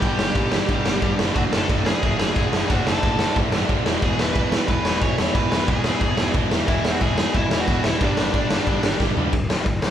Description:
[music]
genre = punk rock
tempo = 181 BPM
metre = 4/4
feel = straight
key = unclear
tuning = A4 = 440 Hz
[part]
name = high-gain lead guitar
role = melody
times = 0.0-9.0 s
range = D4 to C#6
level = -27 LUFS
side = equal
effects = distortion
[part]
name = distorted electric guitar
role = riff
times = 0.0-9.9 s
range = D2 to C4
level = -28 LUFS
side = left 8 dB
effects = overdrive
[part]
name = distorted electric guitar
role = riff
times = 0.0-9.3 s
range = D2 to G3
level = -26 LUFS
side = right 8 dB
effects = distortion
[part]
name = fuzz picked electric bass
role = bass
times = 0.0-9.9 s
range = D1 to C#2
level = -29 LUFS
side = equal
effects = overdrive
[part]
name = raw garage drum kit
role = drums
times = 0.0-9.9 s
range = crash cymbal, kick drum, snare drum, toms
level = -21 LUFS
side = equal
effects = none
[sound]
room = light reverb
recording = band playing live in one room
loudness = -18 LUFS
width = side -10 dB against mid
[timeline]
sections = 0.0-9.3 A section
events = drum fill 9.0-9.3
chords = 0.0 G5; 1.2 D/F#; 3.9 E; 8.0 G5; 9.3 D5

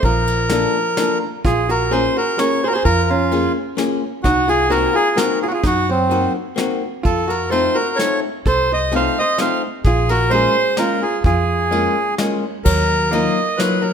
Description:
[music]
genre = musette waltz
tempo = 128 BPM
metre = 3/4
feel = straight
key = Bb minor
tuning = A4 = 438 Hz
[part]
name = bandoneon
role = melody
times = 0.0-13.9 s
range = C4 to F5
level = -18 LUFS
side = equal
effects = none
[part]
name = archtop guitar, miked and amplified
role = second line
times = 0.0-13.9 s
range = F3 to C5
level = -23 LUFS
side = right 4 dB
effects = none
[part]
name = upright bass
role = bass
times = 0.0-13.3 s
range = Bb1 to Gb2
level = -22 LUFS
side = equal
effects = none
[part]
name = soft brush drum kit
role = drums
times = 0.0-13.7 s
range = crash cymbal, kick drum, ride cymbal, snare drum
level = -24 LUFS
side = equal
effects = none
[part]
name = archtop guitar, miked and amplified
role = accompaniment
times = 0.5-13.8 s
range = Gb3 to A4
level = -22 LUFS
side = left 4 dB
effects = none
[sound]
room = moderate recital hall reverb, RT60 1.4 s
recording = none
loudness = -15 LUFS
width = side -7 dB against mid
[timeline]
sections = 0.0-1.4 A section; 1.4-12.7 B section; 12.7-13.9 C section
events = none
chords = 0.0 Bbmaj7; 1.4 Bbm7; 4.2 Cm7b5; 7.0 F7; 9.8 Bbm7; 12.7 Ebmadd9

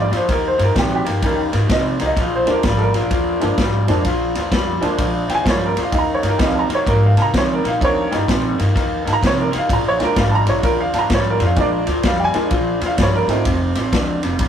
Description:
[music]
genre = electric blues shuffle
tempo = 128 BPM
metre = 4/4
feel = swing 64% on 8ths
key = Bb mixolydian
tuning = A4 = 441 Hz
[part]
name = clear upright piano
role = accompaniment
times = 0.0-13.9 s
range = Eb3 to Bb5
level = -20 LUFS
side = right 2 dB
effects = none
[part]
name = electric guitar through a small old amp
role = riff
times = 0.0-14.5 s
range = F2 to C4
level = -21 LUFS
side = left 2 dB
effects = none
[part]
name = upright bass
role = bass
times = 0.0-14.5 s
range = F1 to Db3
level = -22 LUFS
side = equal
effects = none
[part]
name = vintage drum kit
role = drums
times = 0.1-14.5 s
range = kick drum, ride cymbal, snare drum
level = -21 LUFS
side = equal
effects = none
[sound]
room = moderate small room ambience, RT60 0.5 s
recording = rough rehearsal-room recording, tube saturation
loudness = -15 LUFS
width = side -8 dB against mid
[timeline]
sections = 0.0-14.5 A section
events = none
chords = 0.3 Eb7; 2.2 Bb7; 5.9 Eb7; 9.7 Bb7; 13.5 F7

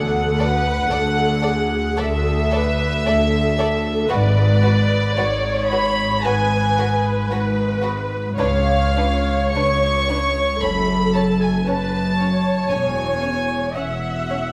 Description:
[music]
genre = classical, slow romantic movement for string orchestra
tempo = 57 BPM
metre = 4/4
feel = rubato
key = unclear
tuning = A4 = 440 Hz
[part]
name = dark studio violin section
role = melody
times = 0.0-14.5 s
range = D5 to C#6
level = -25 LUFS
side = equal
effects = none
[part]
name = dark studio viola section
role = accompaniment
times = 0.0-14.5 s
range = G#4 to E5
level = -26 LUFS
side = equal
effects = none
[part]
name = warm symphonic cello section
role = bass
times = 0.0-14.5 s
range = C#2 to G#2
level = -25 LUFS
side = equal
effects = none
[part]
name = warm symphonic double bass section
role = bass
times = 0.0-14.5 s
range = E1 to D2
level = -26 LUFS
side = equal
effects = none
[part]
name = warm symphonic violin section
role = second line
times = 0.4-14.4 s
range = C#4 to D5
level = -31 LUFS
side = equal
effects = none
[sound]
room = wet scoring stage reverb, RT60 1.6 s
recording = none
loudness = -19 LUFS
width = mono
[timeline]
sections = 0.0-14.5 A section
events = none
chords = 0.0 D; 4.1 G#dim; 8.4 C#; 10.6 F#m; 12.7 C#m/E

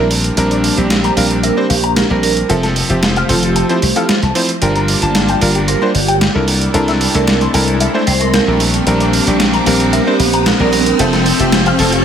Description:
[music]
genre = nu-disco, nu disco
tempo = 113 BPM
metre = 4/4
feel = straight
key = unclear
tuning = A4 = 439 Hz
[part]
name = bright electric grand piano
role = accompaniment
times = 0.0-12.0 s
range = F3 to A5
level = -17 LUFS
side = right 1 dB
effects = ping-pong delay
[part]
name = lush unison pad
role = sustained chords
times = 0.0-12.0 s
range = F3 to A5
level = -21 LUFS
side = left 1 dB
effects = chorus
[part]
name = electric guitar with an envelope filter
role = riff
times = 0.0-12.0 s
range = F4 to C6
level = -22 LUFS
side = left 5 dB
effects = ensemble chorus, low-pass filter
[part]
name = slap bass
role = bass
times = 0.0-12.0 s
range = F1 to C2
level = -17 LUFS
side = left 1 dB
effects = none
[part]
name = riser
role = sound effects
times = 0.8-12.0 s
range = none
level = -22 LUFS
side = left 1 dB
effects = none
[part]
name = dusty soul sampler-style drum kit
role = drums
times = 0.1-12.0 s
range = hi-hat, snare drum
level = -17 LUFS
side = right 1 dB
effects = overdrive, studio reverb
[part]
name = vibraphone with medium hard mallets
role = melody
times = 1.4-12.0 s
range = F4 to C5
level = -21 LUFS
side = right 7 dB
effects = ping-pong delay
[sound]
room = light reverb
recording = none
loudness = -11 LUFS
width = side -8 dB against mid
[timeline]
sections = 0.0-12.0 A section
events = build-up 0.0-12.0; riser 0.8-12.0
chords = 0.1 Bb69; 2.5 Fmaj7; 4.6 Gm7; 6.5 C13; 8.6 Bb69; 11.0 Fmaj7

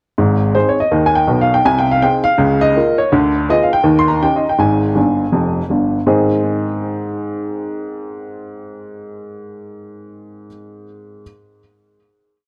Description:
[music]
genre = jazz, stride piano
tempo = 163 BPM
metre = 4/4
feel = swing 60% on 8ths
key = Ab major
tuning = A4 = 440 Hz
[part]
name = warm upright piano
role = solo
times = 0.2-11.2 s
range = F1 to C6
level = -16 LUFS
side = equal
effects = tape echo
[sound]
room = moderate studio reverb, RT60 0.6 s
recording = cassette tape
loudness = -15 LUFS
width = mono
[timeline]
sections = 0.2-6.1 A section; 6.1-9.0 final chord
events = upright piano fill 5.0-6.1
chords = 0.2 Ab; 1.6 Ab/C; 2.4 Bbm/Db; 3.1 Ddim7; 3.9 Eb7; 4.6 Fmadd9; 6.1 Ab

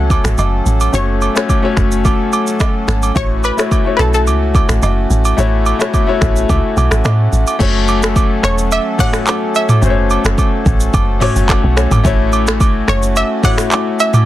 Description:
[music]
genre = afrobeats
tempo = 108 BPM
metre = 4/4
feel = straight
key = unclear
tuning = A4 = 436 Hz
[part]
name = analog pluck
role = melody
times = 0.0-14.3 s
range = A4 to F#5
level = -18 LUFS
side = equal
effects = chorus, tape echo, plate reverb
[part]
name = clear concert grand piano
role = accompaniment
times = 0.0-14.3 s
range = A3 to F#5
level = -18 LUFS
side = left 6 dB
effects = plate reverb
[part]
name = pedal harmonium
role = sustained chords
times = 0.0-14.3 s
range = F#3 to A4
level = -22 LUFS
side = right 2 dB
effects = plate reverb
[part]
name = deep log drum bass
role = bass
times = 0.0-13.2 s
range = E1 to A2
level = -15 LUFS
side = equal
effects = none
[part]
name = afro-pop drum kit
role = drums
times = 0.1-14.3 s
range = crash cymbal, finger snaps, handclaps, hi-hat, kick drum, rim click, shaker, toms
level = -15 LUFS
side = equal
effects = vintage 12-bit sampler grit, soft clipping on snare
[part]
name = agogo bells and woodblock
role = percussion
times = 0.1-14.3 s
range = none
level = -22 LUFS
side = right 5 dB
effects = none
[sound]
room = little or no reverb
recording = dense, heavily limited modern master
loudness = -11 LUFS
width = side -14 dB against mid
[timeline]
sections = 0.0-7.6 A section; 7.6-14.3 B section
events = grand piano fill 11.2-12.0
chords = 0.0 F#m; 3.2 A6; 7.6 F#m; 12.0 A6

